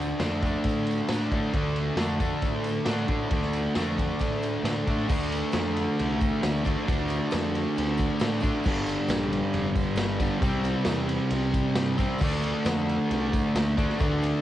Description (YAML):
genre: garage rock duo or trio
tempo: 135 BPM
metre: 4/4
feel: straight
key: D minor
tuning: A4 = 440 Hz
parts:
  - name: thick fuzz guitar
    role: riff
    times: 0.0-14.4 s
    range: G2 to D4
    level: -26 LUFS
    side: equal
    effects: distortion, cassette tape
  - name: growling picked electric bass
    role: bass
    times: 0.0-14.3 s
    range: F1 to A2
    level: -33 LUFS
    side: equal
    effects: overdrive
  - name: tambourine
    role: percussion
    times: 0.0-14.3 s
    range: none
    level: -50 LUFS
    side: right 7 dB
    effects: none
  - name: raw garage drum kit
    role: drums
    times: 0.2-14.3 s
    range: crash cymbal, kick drum, ride cymbal, snare drum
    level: -30 LUFS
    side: equal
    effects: cassette tape
room: light reverb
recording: home recording on cassette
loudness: -24 LUFS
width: side -13 dB against mid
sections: 0.0-5.1 A section; 5.1-14.4 B section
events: none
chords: 0.0 Dm; 8.7 Gm; 10.4 C; 12.2 Dm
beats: 0.21 0.65 1.10 | 1.54 1.99 2.43 2.87 | 3.32 3.76 4.21 4.65 | 5.10 5.54 5.98 6.43 | 6.87 7.32 7.76 8.21 | 8.65 9.10 9.54 9.98 | 10.43 10.87 11.32 11.76 | 12.21 12.65 13.10 13.54 | 13.99